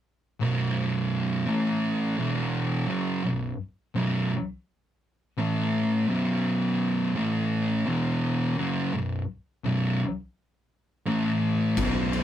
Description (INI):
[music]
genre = stoner and doom metal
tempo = 84 BPM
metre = 4/4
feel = straight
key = unclear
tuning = A4 = 440 Hz
[part]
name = thick fuzz guitar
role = riff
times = 0.4-12.2 s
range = B1 to A3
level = -32 LUFS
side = left 7 dB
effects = distortion
[part]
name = thick fuzz guitar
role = riff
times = 0.4-12.2 s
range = B1 to A3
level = -25 LUFS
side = right 2 dB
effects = distortion
[part]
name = hollow-body short-scale fingered electric bass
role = bass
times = 11.8-12.2 s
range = B0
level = -34 LUFS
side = left 1 dB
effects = overdrive
[part]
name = oversized low-tuned drum kit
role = drums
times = 11.8-12.2 s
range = kick drum, ride cymbal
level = -27 LUFS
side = left 2 dB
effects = none
[sound]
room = light reverb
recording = rough rehearsal-room recording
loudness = -24 LUFS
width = side -11 dB against mid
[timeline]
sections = 0.4-12.2 A section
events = none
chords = 0.4 B5; 1.5 A5; 2.2 E5; 2.9 B5; 5.4 A5; 6.1 B5; 7.2 A5; 7.9 E5; 8.6 B5; 11.1 A5